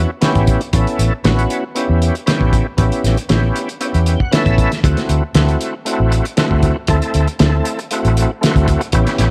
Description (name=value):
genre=straight-eighth soul blues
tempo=117 BPM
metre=4/4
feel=straight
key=unclear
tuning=A4 = 440 Hz
part: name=overdriven tonewheel organ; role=accompaniment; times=0.0-9.3 s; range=A3 to G5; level=-21 LUFS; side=equal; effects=slow rotary speaker, chorus vibrato
part: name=vintage muted fingered electric bass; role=bass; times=0.0-9.3 s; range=A1 to E2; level=-17 LUFS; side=equal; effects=none
part: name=cloth-damped thuddy drum kit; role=drums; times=0.2-9.3 s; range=hi-hat, kick drum, snare drum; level=-20 LUFS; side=equal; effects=none
room=studio ambience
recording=none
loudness=-16 LUFS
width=mono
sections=0.0-9.3 A section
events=tonewheel organ fill 3.8-4.8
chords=0.0 A9; 4.8 D9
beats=0.23 | 0.74 1.25 1.76 2.27 | 2.79 3.30 3.81 4.33 | 4.84 5.35 5.86 6.38 | 6.89 7.40 7.91 8.43 | 8.94